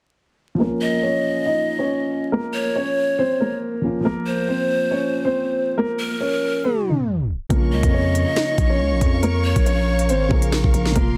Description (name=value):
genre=hip hop, drill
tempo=139 BPM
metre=4/4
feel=half-time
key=Bb minor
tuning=A4 = 441 Hz
part: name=dark concert grand piano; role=accompaniment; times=0.5-11.2 s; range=Bb2 to Ab4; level=-30 LUFS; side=equal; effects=low-pass filter
part: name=dark concert grand piano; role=melody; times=0.6-11.2 s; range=Bb3 to Eb5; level=-25 LUFS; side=equal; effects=low-pass filter, tape echo
part: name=breathy mellow pan flute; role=second line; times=0.8-10.5 s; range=Bb4 to F5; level=-27 LUFS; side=equal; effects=tape echo
part: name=warm symphonic string section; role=sustained chords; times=7.5-11.2 s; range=Bb4 to Db6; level=-33 LUFS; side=equal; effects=none
part: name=growling 808-style bass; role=bass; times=7.5-11.2 s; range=F1 to F2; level=-23 LUFS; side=equal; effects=none
part: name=drill drum kit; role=drums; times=7.5-11.1 s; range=hi-hat, kick drum, snare drum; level=-22 LUFS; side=equal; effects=none
room=light reverb, small room ambience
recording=dense, heavily limited modern master, vinyl crackle, tape stop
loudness=-20 LUFS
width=mono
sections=0.6-7.5 A section; 7.5-11.2 B section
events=filter sweep 0.6-7.5; tape stop 6.6-7.5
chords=0.6 Bbm; 4.0 Fsus4; 7.5 Bbm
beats=| 0.60 1.03 1.46 1.89 | 2.32 2.75 3.19 3.62 | 4.05 4.48 4.91 5.34 | 5.78 6.21 6.64 7.07 | 7.50 7.93 8.37 8.80 | 9.23 9.66 10.09 10.52 | 10.96